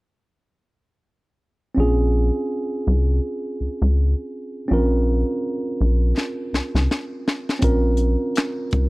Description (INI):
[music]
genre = R&B, neo-soul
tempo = 82 BPM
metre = 4/4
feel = swing 58% on 16ths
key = Bb minor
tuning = A4 = 444 Hz
[part]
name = tine electric piano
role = accompaniment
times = 1.7-8.9 s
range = C4 to Bb4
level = -24 LUFS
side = right 2 dB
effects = none
[part]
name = rubbery square bass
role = bass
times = 1.8-8.9 s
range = Bb1 to Db2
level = -18 LUFS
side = equal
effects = none
[part]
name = tight funk drum kit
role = drums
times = 6.2-8.9 s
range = handclaps, hi-hat, kick drum, snare drum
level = -23 LUFS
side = left 1 dB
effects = none
[sound]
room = small room ambience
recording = dry, close 1970s-style studio recording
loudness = -19 LUFS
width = side -22 dB against mid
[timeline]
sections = 1.8-8.9 A section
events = drum fill 6.2-7.6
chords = 1.8 Bbm9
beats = | 1.76 2.50 3.23 3.96 | 4.69 5.42 6.16 6.89 | 7.62 8.35